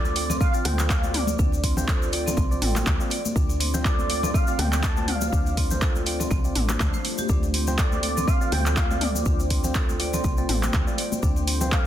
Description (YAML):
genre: afro house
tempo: 122 BPM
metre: 4/4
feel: swing 56% on 16ths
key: D minor pentatonic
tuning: A4 = 440 Hz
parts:
  - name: expressive synth lead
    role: melody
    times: 0.0-11.9 s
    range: D5 to A5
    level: -31 LUFS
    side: equal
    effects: ensemble chorus, tape echo
  - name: dark analog pad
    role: sustained chords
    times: 0.1-11.9 s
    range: A3 to G5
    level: -35 LUFS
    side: right 2 dB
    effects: chorus, sidechain pumping
  - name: marimba with medium hard mallets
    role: arpeggios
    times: 0.0-11.8 s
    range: A3 to D5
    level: -32 LUFS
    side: right 2 dB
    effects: sidechain pumping, tape echo
  - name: tine electric piano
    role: stabs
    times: 0.0-11.9 s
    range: C4 to G5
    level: -34 LUFS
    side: left 2 dB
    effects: overdrive, phaser, sidechain pumping, tape echo
  - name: woody FM bass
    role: bass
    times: 0.0-11.9 s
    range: A1 to D2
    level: -27 LUFS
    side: equal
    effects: sidechain pumping
  - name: cabasa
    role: percussion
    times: 0.0-11.8 s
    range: none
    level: -35 LUFS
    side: left 4 dB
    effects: none
  - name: congas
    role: percussion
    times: 0.0-11.7 s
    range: none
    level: -32 LUFS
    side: left 2 dB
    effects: none
  - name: deep house drum kit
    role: drums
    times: 0.2-11.8 s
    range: handclaps, hi-hat, toms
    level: -28 LUFS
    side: equal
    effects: overdrive
  - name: electronic kick drum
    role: drums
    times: 0.4-11.8 s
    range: none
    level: -24 LUFS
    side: equal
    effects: none
room: digital ambience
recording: dense, heavily limited modern master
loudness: -21 LUFS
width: side -11 dB against mid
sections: 0.0-11.9 A section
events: none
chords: 0.0 Dm7